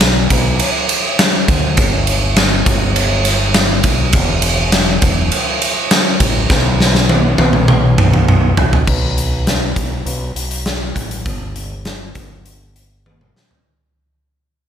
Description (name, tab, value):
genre	quiet-loud alternative rock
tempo	102 BPM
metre	4/4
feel	straight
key	B minor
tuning	A4 = 443 Hz
part	growling fingered electric bass	bass	0.0-13.3 s	E1 to D2	-18 LUFS	equal	overdrive
part	big rock drum kit	drums	0.0-13.6 s	crash cymbal, hi-hat, kick drum, ride cymbal, snare drum, toms	-13 LUFS	equal	none
room	light reverb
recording	none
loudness	-12 LUFS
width	side -9 dB against mid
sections	0.0-8.9 A section; 8.9-13.7 B section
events	drum fill 6.5-8.9, 13.1-13.7; fade-out 8.9-13.7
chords	none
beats	0.01 0.60 1.20 | 1.78 2.37 2.96 3.55 | 4.14 4.73 5.32 5.91 | 6.50 7.09 7.68 8.27 | 8.86 9.46 10.06 10.65 | 11.25 11.85 12.45 13.05